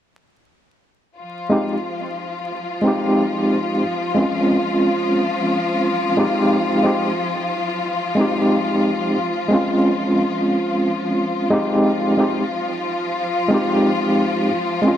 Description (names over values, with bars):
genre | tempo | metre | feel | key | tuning
trip hop | 90 BPM | 4/4 | swing 54% on 16ths | F minor | A4 = 440 Hz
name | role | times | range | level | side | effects
clear studio string section | sustained chords | 1.2-15.0 s | F3 to F4 | -22 LUFS | left 2 dB | none
overdriven tine electric piano | accompaniment | 1.5-15.0 s | Ab3 to G4 | -18 LUFS | equal | tremolo, tape echo
room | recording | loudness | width
moderate echo chamber reverb, RT60 1.7 s, small room ambience | vinyl crackle | -17 LUFS | side -10 dB against mid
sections
1.2-15.0 A section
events
none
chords
1.2 Fm7; 3.8 Dbmaj9/F; 6.5 Fm7; 9.2 Dbmaj7/F; 11.8 Fm7